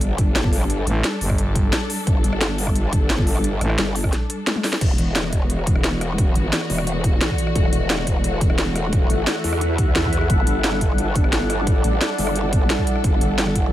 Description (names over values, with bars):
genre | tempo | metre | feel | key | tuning
dark technical drum and bass | 175 BPM | 4/4 | straight | E minor | A4 = 439 Hz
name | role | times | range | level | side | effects
dark symphonic string section | sustained chords | 0.0-13.7 s | E3 to A4 | -28 LUFS | left 1 dB | sidechain pumping
growl bass | bass | 0.0-13.7 s | E1 to E2 | -23 LUFS | equal | chorus, overdrive, sidechain pumping
drum and bass drum kit | drums | 0.0-13.6 s | crash cymbal, hi-hat, rim click, snare drum, toms | -24 LUFS | equal | studio reverb
electronic kick drum | drums | 0.2-13.6 s | none | -20 LUFS | equal | studio reverb
growling FM bass | bass | 0.9-3.8 s | G1 to A1 | -20 LUFS | equal | tube saturation
deep dark ambient pad | texture | 6.5-13.7 s | E4 to F#5 | -26 LUFS | left 1 dB | chorus, built-in reverb, sidechain pumping
room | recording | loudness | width
digital ambience | none | -17 LUFS | side -13 dB against mid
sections
0.0-4.8 A section; 4.8-13.7 A section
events
drop 0.0-4.8, 4.8-13.7; drum fill 4.5-4.8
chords
0.0 Gsus2; 4.8 E7(no3); 10.3 Gsus2